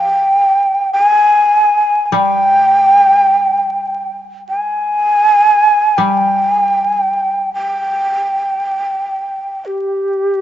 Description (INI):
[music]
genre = japanese traditional, Japanese chamber music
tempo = free time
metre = none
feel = none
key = unclear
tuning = A4 = 441 Hz
[part]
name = breathy mellow shakuhachi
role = melody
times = 0.0-10.4 s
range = G4 to Ab5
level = -11 LUFS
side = equal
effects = none
[part]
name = koto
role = accompaniment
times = 0.0-9.4 s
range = F3 to G3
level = -21 LUFS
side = left 5 dB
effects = none
[sound]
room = moderate plate reverb, RT60 3.6 s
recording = dark, warm production, vinyl crackle, nothing above 7.8 kHz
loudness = -11 LUFS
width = side -12 dB against mid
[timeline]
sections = 0.0-10.4 A section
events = none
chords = none